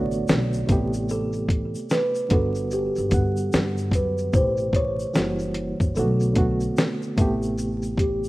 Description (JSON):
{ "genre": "lo-fi hip hop", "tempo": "74 BPM", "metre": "4/4", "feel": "swing 61% on 16ths", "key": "unclear", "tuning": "A4 = 440 Hz", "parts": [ { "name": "kalimba", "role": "melody", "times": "0.0-8.3 s", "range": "G4 to D5", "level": "-27 LUFS", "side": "right 1 dB", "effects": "low-pass filter, analog delay" }, { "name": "reed electric piano", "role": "accompaniment", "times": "0.0-8.3 s", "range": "B2 to F#5", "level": "-27 LUFS", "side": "right 1 dB", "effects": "fast tremolo, low-pass filter" }, { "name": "upright bass", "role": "bass", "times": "0.0-8.3 s", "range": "F#1 to G2", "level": "-27 LUFS", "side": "equal", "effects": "none" }, { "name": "tube shaker", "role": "percussion", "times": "0.1-8.3 s", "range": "none", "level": "-46 LUFS", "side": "left 3 dB", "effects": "none" }, { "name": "dusty soul sampler-style drum kit", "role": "drums", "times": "0.3-8.2 s", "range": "hi-hat, kick drum, shaker, snare drum", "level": "-22 LUFS", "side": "equal", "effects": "none" } ], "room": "light reverb, small room ambience", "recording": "rough home demo mix, vinyl crackle", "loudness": "-21 LUFS", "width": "side -18 dB against mid", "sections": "0.0-4.3 A section; 4.3-8.3 B section", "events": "none", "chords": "0.0 Bm7; 0.7 Am9; 2.3 Gmaj7; 4.3 Am9; 5.1 F#7b9; 6.0 Bm7; 7.2 Am9", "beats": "0.28 | 1.09 1.90 2.71 3.52 | 4.33 5.15 5.96 6.77 | 7.58" }